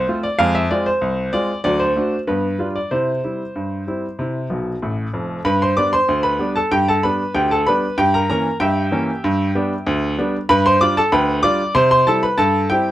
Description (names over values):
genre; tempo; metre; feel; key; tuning
ragtime piano; 95 BPM; 2/4; straight; C major, G major from 5.5 s; A4 = 436 Hz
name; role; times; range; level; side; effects
bright baby grand piano; solo; 0.0-12.9 s; F1 to D6; -16 LUFS; equal; none
room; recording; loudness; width
little or no reverb; close, detailed microphones; -16 LUFS; side -14 dB against mid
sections
0.0-5.5 A section; 5.5-12.9 B section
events
grand piano fill 4.5-5.5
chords
0.4 Fm; 1.6 D7; 2.3 G7; 2.9 C; 5.5 G; 8.0 Gdim7; 9.2 G; 10.5 G7; 11.7 C